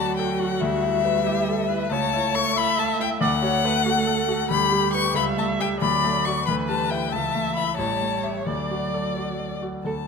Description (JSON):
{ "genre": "quick classical-period movement for piano quartet", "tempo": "92 BPM (dotted quarters)", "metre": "6/8", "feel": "straight", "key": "D major", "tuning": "A4 = 444 Hz", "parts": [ { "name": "warm violin", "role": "melody", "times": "0.0-10.1 s", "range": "D5 to C#6", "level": "-24 LUFS", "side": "left 9 dB", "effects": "none" }, { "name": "rich cello", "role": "second line", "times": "0.0-10.1 s", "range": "E3 to A3", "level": "-29 LUFS", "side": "right 7 dB", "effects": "none" }, { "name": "clear concert grand piano", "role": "accompaniment", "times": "0.0-10.1 s", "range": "A1 to E5", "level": "-27 LUFS", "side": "left 2 dB", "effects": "none" }, { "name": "warm viola", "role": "accompaniment", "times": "0.0-9.9 s", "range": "F#4 to E5", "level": "-28 LUFS", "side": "right 4 dB", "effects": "none" } ], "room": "moderate concert hall reverb, RT60 2.3 s", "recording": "close, detailed microphones", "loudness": "-21 LUFS", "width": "side -5 dB against mid", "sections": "0.0-9.9 A section", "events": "none", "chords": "0.0 D; 0.6 Em7/D; 1.9 A/C#; 3.2 D; 4.5 G/D; 5.2 A7/C#; 5.8 D; 6.5 Em7/D; 7.1 A/C#; 7.8 A7; 8.5 D" }